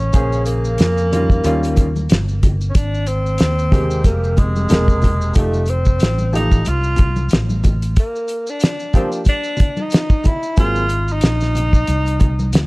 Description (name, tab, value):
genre	hip hop, jazz-hop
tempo	92 BPM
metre	4/4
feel	swing 57% on 16ths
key	unclear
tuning	A4 = 436 Hz
part	mellow tenor saxophone	melody	0.0-12.7 s	Ab3 to F4	-22 LUFS	equal	none
part	mellow fretless electric bass	bass	0.0-12.7 s	E1 to F2	-19 LUFS	equal	tube saturation, lush chorus
part	clear upright piano	accompaniment	0.1-10.8 s	C3 to C5	-22 LUFS	equal	none
part	cloth-damped thuddy drum kit	drums	0.1-12.7 s	hi-hat, kick drum, snare drum	-14 LUFS	equal	none
part	maracas and congas	percussion	0.1-12.7 s	none	-29 LUFS	left 1 dB	none
room	small room ambience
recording	dry, gritty hardware recording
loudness	-14 LUFS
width	side -24 dB against mid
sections	0.0-12.7 A section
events	none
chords	0.1 Bbm9; 1.4 Eb9; 2.8 Abmaj9; 5.4 F9; 8.0 Bb6; 10.6 Abadd9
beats	| 0.14 0.79 1.45 2.10 | 2.75 3.40 4.05 4.71 | 5.36 6.01 6.66 7.32 | 7.97 8.62 9.27 9.92 | 10.58 11.23 11.88 12.53